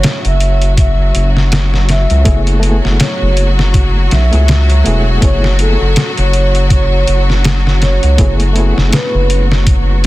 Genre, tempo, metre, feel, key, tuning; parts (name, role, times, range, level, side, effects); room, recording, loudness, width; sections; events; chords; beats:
trip hop; 81 BPM; 4/4; swing 57% on 16ths; F# minor; A4 = 439 Hz
pure breathy sine lead; melody; 0.0-10.1 s; A4 to E5; -20 LUFS; right 1 dB; chorus, tape echo
rich symphonic string section; sustained chords; 0.0-10.1 s; F#3 to F#4; -21 LUFS; left 2 dB
round analog bass; bass; 0.0-10.1 s; E1 to C#2; -11 LUFS; equal
trip hop sampler-style drum kit; drums; 0.0-10.1 s; hi-hat, kick drum, snare drum; -14 LUFS; equal
wind-like tuned noise texture; texture; 0.4-10.1 s; C#4 to C#5; -28 LUFS; right 3 dB; built-in reverb
bright reed electric piano; accompaniment; 2.2-10.1 s; A3 to G#4; -20 LUFS; left 1 dB; fast tremolo, tape echo
little or no reverb; dense, heavily limited modern master; -9 LUFS; side -17 dB against mid
0.0-10.1 A section
0.0 F#m11
0.04 0.78 1.52 | 2.26 3.00 3.74 4.48 | 5.22 5.96 6.70 7.44 | 8.18 8.93 9.67